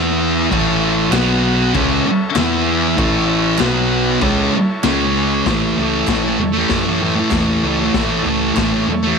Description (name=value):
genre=garage rock duo or trio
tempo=97 BPM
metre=4/4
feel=straight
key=A major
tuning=A4 = 441 Hz
part: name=combo organ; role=sustained chords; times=0.0-9.2 s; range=C#4 to F#5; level=-26 LUFS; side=right 1 dB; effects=none
part: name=thick fuzz guitar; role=riff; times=0.0-9.2 s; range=A2 to E4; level=-15 LUFS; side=equal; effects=distortion
part: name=hollow-body short-scale fingered electric bass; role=bass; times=0.0-9.1 s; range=A1 to F#2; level=-26 LUFS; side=equal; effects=none
part: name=raw garage drum kit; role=drums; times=0.5-8.7 s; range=crash cymbal, hi-hat, kick drum, snare drum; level=-23 LUFS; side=left 4 dB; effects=none
part: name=group handclap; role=percussion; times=1.1-8.7 s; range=none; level=-28 LUFS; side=right 13 dB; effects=none
room=light reverb, small room ambience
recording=1960s-style stereo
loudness=-14 LUFS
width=side -5 dB against mid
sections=0.0-5.5 A section; 5.5-9.2 B section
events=none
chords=0.0 E5; 0.5 A; 1.1 B5; 1.8 A; 2.4 E5; 3.0 A; 3.6 B5; 4.2 A; 4.8 C#5; 5.5 A